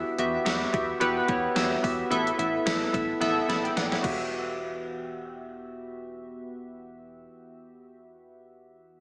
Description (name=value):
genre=1980s-style pop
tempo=109 BPM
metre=4/4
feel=swing 55% on 16ths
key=E minor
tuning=A4 = 438 Hz
part: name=chorused retro synth keys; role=accompaniment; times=0.0-9.0 s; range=E2 to B5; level=-27 LUFS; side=equal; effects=none
part: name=solid FM bass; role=bass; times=0.0-7.3 s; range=E1 to E2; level=-37 LUFS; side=equal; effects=none
part: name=gated 80s digital drum machine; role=drums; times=0.2-4.2 s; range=crash cymbal, hi-hat, kick drum, snare drum, tambourine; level=-32 LUFS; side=equal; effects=gated reverb, gated reverb snare, overdrive
room=wet lush hall reverb, RT60 1.9 s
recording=big arena sound, small speaker sound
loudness=-24 LUFS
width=side -37 dB against mid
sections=0.0-4.3 A section; 4.3-6.5 B section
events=drum fill 3.2-4.3; synth keys fill 3.2-4.3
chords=0.0 Emadd9; 2.1 Asus2; 4.0 Emadd9